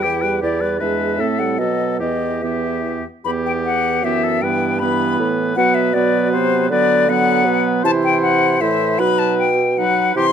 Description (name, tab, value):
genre	quick classical-period movement for wind quintet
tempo	156 BPM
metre	3/4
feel	rubato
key	E minor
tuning	A4 = 440 Hz
part	bright silver concert flute	melody	0.0-10.3 s	C5 to C6	-19 LUFS	left 6 dB	none
part	clear oboe	second line	0.0-10.3 s	G4 to C5	-24 LUFS	left 2 dB	none
part	bright clarinet	accompaniment	0.0-10.3 s	B3 to G4	-23 LUFS	right 9 dB	none
part	clear French horn	accompaniment	0.0-10.3 s	E3 to A3	-25 LUFS	right 1 dB	none
part	mellow bassoon	bass	0.0-10.3 s	E2 to D3	-21 LUFS	right 3 dB	none
room	moderate studio reverb, RT60 0.8 s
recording	dark, warm production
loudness	-15 LUFS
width	side -8 dB against mid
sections	0.0-3.3 A section; 3.3-10.3 B section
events	none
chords	0.0 Em; 0.8 E7; 1.2 Am; 1.6 B7; 2.0 Em; 4.4 Em/G; 5.6 Bm; 6.7 Bm/D; 7.8 Am/C; 9.0 B